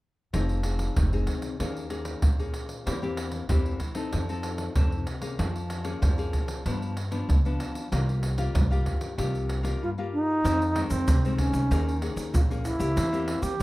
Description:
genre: samba and choro.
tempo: 95 BPM.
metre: 4/4.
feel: straight.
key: F minor.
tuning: A4 = 441 Hz.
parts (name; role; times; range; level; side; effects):
nylon-string guitar; accompaniment; 0.3-13.6 s; F2 to A4; -33 LUFS; left 3 dB; none.
upright bass; bass; 0.3-13.6 s; F1 to G2; -28 LUFS; equal; none.
surdo, pandeiro and tube shaker; percussion; 0.3-13.6 s; none; -28 LUFS; right 1 dB; none.
wooden-headed alto flute; melody; 9.8-13.6 s; C4 to G4; -26 LUFS; right 1 dB; none.
room: light reverb.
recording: dry, close 1970s-style studio recording.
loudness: -25 LUFS.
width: side -19 dB against mid.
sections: 0.3-10.4 A section; 10.4-13.6 B section.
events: none.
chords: 0.3 Fm7; 1.6 Eb7sus4; 2.9 C7/E; 4.1 F7; 5.4 Bbm7/F; 6.7 G7; 7.9 C7sus4; 10.4 Fm7; 11.7 Eb7sus4; 13.0 C7/E.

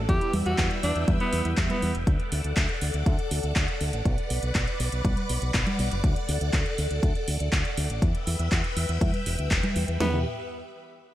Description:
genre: italo disco.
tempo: 121 BPM.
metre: 4/4.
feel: straight.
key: E minor.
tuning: A4 = 440 Hz.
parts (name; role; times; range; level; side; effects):
phased string machine; sustained chords; 0.0-10.2 s; G4 to E6; -33 LUFS; equal; ensemble chorus, phaser.
mellow synth brass; stabs; 0.0-1.8 s; G3 to E5; -36 LUFS; right 3 dB; chorus.
fingered electric bass with an envelope filter; bass; 0.0-10.2 s; E1 to E2; -28 LUFS; equal; tube saturation.
bright alto saxophone; melody; 0.1-1.9, 10.0-10.2 s; B3 to G4; -30 LUFS; equal; digital delay.
house drum kit; drums; 0.1-10.1 s; kick drum, snare drum, toms; -26 LUFS; equal; none.
house drum kit; drums; 0.1-10.0 s; congas, handclaps, hi-hat; -30 LUFS; right 1 dB; gated reverb.
room: light reverb, digital ambience.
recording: none.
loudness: -23 LUFS.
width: side -13 dB against mid.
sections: 0.0-10.0 A section; 10.0-11.1 B section.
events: none.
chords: 0.1 Em; 2.1 D; 4.1 Bm; 6.0 D; 8.0 Em.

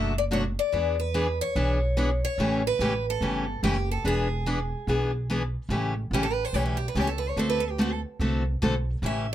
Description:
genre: acoustic string swing (jazz manouche).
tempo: 145 BPM.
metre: 4/4.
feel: swing 64% on 8ths.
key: unclear.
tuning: A4 = 439 Hz.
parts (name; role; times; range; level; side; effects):
picked steel-string acoustic guitar; melody; 0.0-9.3 s; E4 to E5; -29 LUFS; equal; none.
picked steel-string acoustic guitar; accompaniment; 0.0-9.3 s; B2 to A4; -27 LUFS; left 1 dB; none.
upright bass; bass; 0.0-9.3 s; E1 to E2; -28 LUFS; right 1 dB; none.
room: light reverb.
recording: none.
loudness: -24 LUFS.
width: side -12 dB against mid.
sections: 0.0-5.7 A section; 5.7-9.3 B section.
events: steel-string acoustic guitar solo 5.7-9.3.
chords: 0.0 Bm7; 0.7 E7; 2.4 A7; 4.0 E7; 5.7 A7; 7.4 D7.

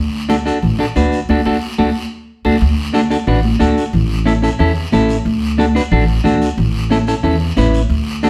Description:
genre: latin, cumbia.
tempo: 181 BPM.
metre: 4/4.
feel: straight.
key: D major.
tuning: A4 = 440 Hz.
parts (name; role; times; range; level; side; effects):
upright bass; bass; 0.0-8.3 s; A1 to E2; -19 LUFS; equal; none.
semi-hollow electric guitar; accompaniment; 0.3-8.3 s; C#4 to B4; -19 LUFS; equal; none.
congas; percussion; 0.3-8.3 s; none; -22 LUFS; equal; none.
guiro; percussion; 0.3-8.3 s; none; -33 LUFS; equal; none.
room: wet studio reverb, RT60 0.7 s.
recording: heard from further back in the room.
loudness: -15 LUFS.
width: mono.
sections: 0.0-2.6 A section; 2.6-8.3 B section.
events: band accent 1.3-2.6.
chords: 0.0 D; 3.9 A; 5.3 D; 6.6 A.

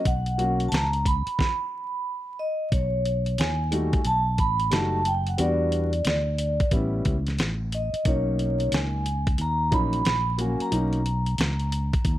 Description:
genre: hip hop, jazz-hop.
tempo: 90 BPM.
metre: 4/4.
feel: swing 64% on 16ths.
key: B major.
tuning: A4 = 440 Hz.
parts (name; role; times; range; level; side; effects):
vibraphone with soft mallets; melody; 0.0-12.2 s; C#5 to B5; -27 LUFS; right 1 dB; none.
fingered electric bass; bass; 0.1-12.2 s; F#1 to E2; -26 LUFS; equal; none.
dusty soul sampler-style drum kit; drums; 0.1-12.2 s; hi-hat, kick drum, snare drum; -26 LUFS; equal; none.
dark grand piano; accompaniment; 0.4-11.0 s; F#3 to F#4; -29 LUFS; left 1 dB; none.
room: small room ambience.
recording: vinyl crackle.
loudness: -22 LUFS.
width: side -14 dB against mid.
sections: 0.0-2.7 A section; 2.7-12.2 B section.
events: stop 1.4-2.7.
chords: 0.0 Bmaj7sus2; 2.7 Badd9; 4.1 B7b13; 5.4 Em7; 6.7 A9; 8.1 Bmaj9.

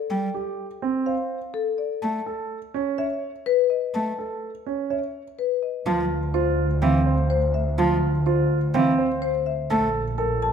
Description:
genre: classical, minimalist pattern music.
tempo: 125 BPM.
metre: 4/4.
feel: straight.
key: D minor from 5.9 s.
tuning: A4 = 440 Hz.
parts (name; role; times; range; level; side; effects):
marimba with medium mallets; melody; 0.0-10.5 s; A4 to A5; -26 LUFS; left 8 dB; none.
warm cello; accompaniment; 0.1-9.9 s; E3 to A3; -28 LUFS; right 1 dB; none.
warm concert grand piano; arpeggios; 0.3-10.5 s; C4 to C#5; -26 LUFS; right 5 dB; none.
warm studio double bass section; bass; 5.9-10.5 s; Bb1 to D2; -24 LUFS; right 1 dB; none.
room: wet recital hall reverb, RT60 1.3 s.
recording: none.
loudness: -22 LUFS.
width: side -7 dB against mid.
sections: 0.0-5.9 A section; 5.9-10.5 B section.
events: none.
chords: 0.0 D7(no3); 2.0 A; 5.9 Dm7; 9.7 Bbmaj7(no3).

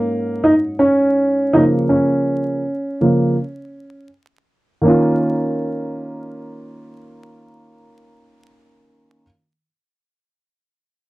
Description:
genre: hip hop.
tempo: 82 BPM.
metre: 4/4.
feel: swing 62% on 16ths.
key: Db major.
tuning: A4 = 440 Hz.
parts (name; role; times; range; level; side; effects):
dark baby grand piano; accompaniment; 0.0-9.2 s; Ab2 to F4; -15 LUFS; right 1 dB; none.
room: moderate booth ambience, RT60 0.2 s.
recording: dry, close 1970s-style studio recording, vinyl crackle.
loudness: -15 LUFS.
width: side -19 dB against mid.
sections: 0.0-4.8 A section; 4.8-7.8 B section.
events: grand piano solo 0.0-4.8.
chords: 0.0 Ab9sus4; 1.5 Db6; 4.8 Db69.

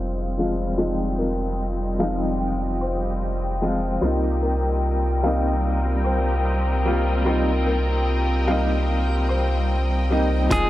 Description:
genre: trip hop.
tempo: 74 BPM.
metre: 4/4.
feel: swing 60% on 16ths.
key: unclear.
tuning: A4 = 440 Hz.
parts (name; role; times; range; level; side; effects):
warm upright piano; accompaniment; 0.0-10.7 s; F3 to F4; -26 LUFS; left 1 dB; tremolo, tape echo.
rich studio string section; sustained chords; 0.0-10.7 s; C4 to G5; -29 LUFS; left 2 dB; low-pass filter.
felt-muted upright piano; arpeggios; 0.0-10.7 s; F4 to F5; -29 LUFS; left 1 dB; vintage 12-bit sampler grit, low-pass filter, tape echo.
soft dub sub bass; bass; 0.0-10.7 s; F1 to C2; -23 LUFS; equal; none.
backwards swelling texture; texture; 0.0-10.5 s; G3 to G5; -33 LUFS; equal; built-in reverb.
clean electric guitar; melody; 10.5-10.7 s; Ab4; -20 LUFS; equal; none.
crunchy breakbeat drum kit; drums; 10.5-10.7 s; hi-hat, kick drum; -23 LUFS; equal; none.
room: light reverb, studio reverb.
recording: low-pass filter.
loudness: -20 LUFS.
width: side -14 dB against mid.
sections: 0.0-10.5 A section.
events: filter sweep on string section 0.0-10.5; filter sweep on felt piano 0.0-10.5; filter sweep 0.0-10.5.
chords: 0.0 Fm7; 4.0 Cm7.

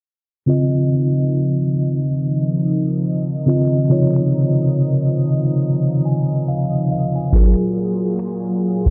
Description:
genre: contemporary R&B.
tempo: 70 BPM.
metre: 4/4.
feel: swing 58% on 16ths.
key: Db major.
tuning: A4 = 440 Hz.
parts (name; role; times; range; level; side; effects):
mellow tine electric piano; accompaniment; 0.5-8.9 s; C3 to Ab5; -19 LUFS; equal; none.
lush unison pad; sustained chords; 0.5-8.9 s; Bb2 to Eb5; -25 LUFS; equal; chorus, phaser.
booming analog drum machine; drums; 7.3-8.9 s; finger snaps, kick drum; -15 LUFS; equal; none.
room: light reverb.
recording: dark, warm production, low-pass filter.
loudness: -18 LUFS.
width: mono.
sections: 0.5-8.9 A section.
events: filter sweep 0.5-8.9; tine electric piano fill 5.6-7.3.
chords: 0.5 Dbmaj9; 7.3 Gbmaj9.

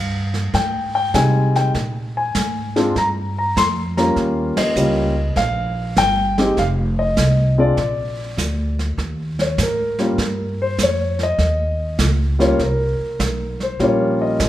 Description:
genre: jazz piano trio.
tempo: 100 BPM.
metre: 4/4.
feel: swing 68% on 8ths.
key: Eb mixolydian.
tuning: A4 = 439 Hz.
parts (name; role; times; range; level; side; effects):
dark grand piano; melody; 0.0-14.5 s; G3 to C6; -19 LUFS; left 1 dB; none.
upright bass; bass; 0.0-14.5 s; F1 to C3; -21 LUFS; equal; none.
jazz brush drum kit; drums; 0.3-14.5 s; brushed snare drum, hi-hat, kick drum, ride cymbal, snare drum; -25 LUFS; right 2 dB; none.
room: moderate recital hall reverb, RT60 1.4 s.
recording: recorded in a church or concert hall.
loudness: -16 LUFS.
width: side -13 dB against mid.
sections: 0.0-9.0 A section; 9.0-14.5 B section.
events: band accent 4.5-4.8; grand piano solo 9.0-14.5.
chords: 0.0 Fm7; 1.7 Bb7(no3); 4.2 Eb9; 6.6 F7(no3); 7.8 Bb; 9.0 Eb9.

